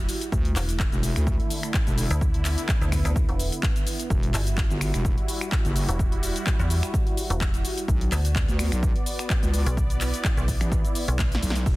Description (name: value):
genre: bass house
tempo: 127 BPM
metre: 4/4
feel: swing 55% on 16ths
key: unclear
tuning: A4 = 440 Hz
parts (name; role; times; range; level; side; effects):
- sweeping resonant pad; sustained chords; 0.0-11.8 s; D3 to D5; -32 LUFS; right 1 dB; chorus, sidechain pumping
- metallic FM bass; bass; 0.0-11.4 s; E1 to E2; -25 LUFS; equal; tube saturation, sidechain pumping
- house drum kit; drums; 0.1-11.8 s; crash cymbal, finger snaps, handclaps, hi-hat, shaker, snare drum; -31 LUFS; left 1 dB; none
- wobble bass; bass; 0.3-11.8 s; E1 to D2; -25 LUFS; equal; chorus, overdrive, sidechain pumping
- electronic kick drum; drums; 0.3-11.8 s; none; -25 LUFS; equal; none
room: digital ambience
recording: dense, heavily limited modern master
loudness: -22 LUFS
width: side -19 dB against mid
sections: 0.0-11.8 A section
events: drum fill 11.2-11.7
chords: 0.3 Dsus2; 4.1 Emadd9; 7.9 Bm